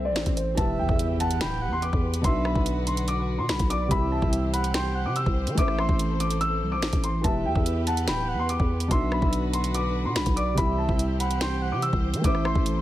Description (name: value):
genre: hip hop, drill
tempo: 144 BPM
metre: 4/4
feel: half-time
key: E minor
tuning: A4 = 440 Hz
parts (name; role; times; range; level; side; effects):
- dark upright piano; melody; 0.0-12.8 s; C5 to E6; -30 LUFS; left 2 dB; low-pass filter, digital delay
- dark grand piano; accompaniment; 0.0-12.8 s; B2 to C5; -32 LUFS; equal; low-pass filter
- growling 808-style bass; bass; 0.0-12.8 s; D1 to E3; -28 LUFS; equal; none
- swell and impact; sound effects; 0.0-2.2 s; none; -37 LUFS; left 1 dB; none
- drill drum kit; drums; 0.2-12.8 s; finger snaps, hi-hat, kick drum, rim click, snare drum; -27 LUFS; equal; none
- breathy flute-like synth lead; second line; 0.6-12.6 s; D5 to G5; -34 LUFS; right 4 dB; chorus, tremolo, digital delay
- dark chamber string section; sustained chords; 0.6-12.8 s; D3 to C5; -34 LUFS; right 1 dB; none
room: light reverb, studio reverb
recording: none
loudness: -22 LUFS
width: side -14 dB against mid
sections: 0.6-12.8 A section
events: swell 0.0-0.6; impact 0.6-2.2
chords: 0.0 Am; 0.6 Em; 2.2 Bm; 3.9 C; 5.6 Am; 7.2 Em; 8.9 Bm; 10.6 C; 12.2 Am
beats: 0.16 | 0.58 0.99 1.41 1.83 | 2.24 2.66 3.08 3.49 | 3.91 4.33 4.74 5.16 | 5.58 5.99 6.41 6.83 | 7.24 7.66 8.08 8.49 | 8.91 9.33 9.74 10.16 | 10.58 10.99 11.41 11.83 | 12.24 12.66